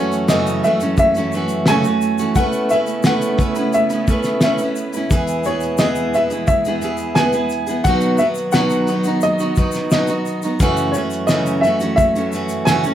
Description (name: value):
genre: acoustic pop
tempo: 87 BPM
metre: 4/4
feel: straight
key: unclear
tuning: A4 = 440 Hz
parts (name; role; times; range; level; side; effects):
- dark upright piano; melody; 0.0-12.9 s; C#5 to G#5; -20 LUFS; equal; plate reverb
- picked steel-string acoustic guitar; accompaniment; 0.0-12.9 s; F#2 to B4; -19 LUFS; right 1 dB; none
- muted studio string section; sustained chords; 0.0-12.9 s; E2 to B3; -25 LUFS; right 2 dB; none
- cloth-damped thuddy drum kit; drums; 0.1-12.9 s; kick drum, shaker, snare drum; -18 LUFS; equal; none
- egg shaker; percussion; 0.1-12.9 s; none; -36 LUFS; left 8 dB; none
room: moderate studio reverb, RT60 0.6 s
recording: none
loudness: -15 LUFS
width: side -11 dB against mid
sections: 0.0-12.9 A section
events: none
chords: 0.0 F#m7; 2.4 Aadd9; 5.1 E; 7.9 B; 10.6 F#m7